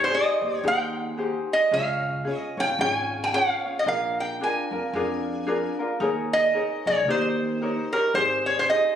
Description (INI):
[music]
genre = Hawaiian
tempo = 112 BPM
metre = 4/4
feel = swing 59% on 8ths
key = Ab major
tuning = A4 = 441 Hz
[part]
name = lap resonator guitar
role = melody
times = 0.0-9.0 s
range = Bb4 to Ab5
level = -23 LUFS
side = right 1 dB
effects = none
[part]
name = ukulele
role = accompaniment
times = 0.0-9.0 s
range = Db4 to Db5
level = -28 LUFS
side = left 3 dB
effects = none
[part]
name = upright bass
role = bass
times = 0.0-8.7 s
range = Ab1 to Ab2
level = -34 LUFS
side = right 2 dB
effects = none
[sound]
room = moderate recital hall reverb, RT60 1.4 s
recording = recorded on a phone in the room, studio ambience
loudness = -22 LUFS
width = side -9 dB against mid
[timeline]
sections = 0.0-9.0 A section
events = none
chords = 0.0 Abmaj7; 1.7 Db; 3.9 Bb7; 6.0 Eb7sus4; 7.1 Eb7; 8.2 Abmaj7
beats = 0.11 0.64 1.18 | 1.72 2.25 2.79 3.33 | 3.86 4.40 4.93 5.47 | 6.01 6.54 7.08 7.62 | 8.15 8.69